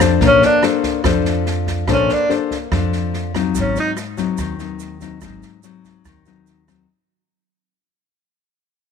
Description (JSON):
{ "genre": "bossa nova", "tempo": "144 BPM", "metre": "4/4", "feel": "straight", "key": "Bb major", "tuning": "A4 = 442 Hz", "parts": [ { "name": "nylon-string guitar", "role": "accompaniment", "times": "0.0-6.9 s", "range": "F2 to C5", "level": "-19 LUFS", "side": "left 10 dB", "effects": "none" }, { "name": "upright bass", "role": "bass", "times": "0.0-6.8 s", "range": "Ab1 to F2", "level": "-22 LUFS", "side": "right 3 dB", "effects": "none" }, { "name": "open jazz drum kit", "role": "drums", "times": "0.0-6.8 s", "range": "kick drum, rim click, snare drum", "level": "-24 LUFS", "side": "right 3 dB", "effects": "none" }, { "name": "tube shaker", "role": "percussion", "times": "0.0-0.2, 3.5-6.9 s", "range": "none", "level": "-35 LUFS", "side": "right 20 dB", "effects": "none" }, { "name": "breathy tenor saxophone", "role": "melody", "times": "0.3-3.9 s", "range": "Db4 to Eb4", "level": "-16 LUFS", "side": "equal", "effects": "none" } ], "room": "light reverb, studio ambience", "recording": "1960s-style stereo with parts hard left and right", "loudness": "-15 LUFS", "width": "side -6 dB against mid", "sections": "0.2-6.9 A section", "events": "fade-out 0.2-6.9; tenor saxophone solo 0.2-6.9", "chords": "0.2 Bbmaj9; 3.5 Ab7", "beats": "| 0.21 0.63 1.04 1.46 | 1.88 2.29 2.71 3.13 | 3.54 3.96 4.38 4.80 | 5.21 5.63 6.05 6.47" }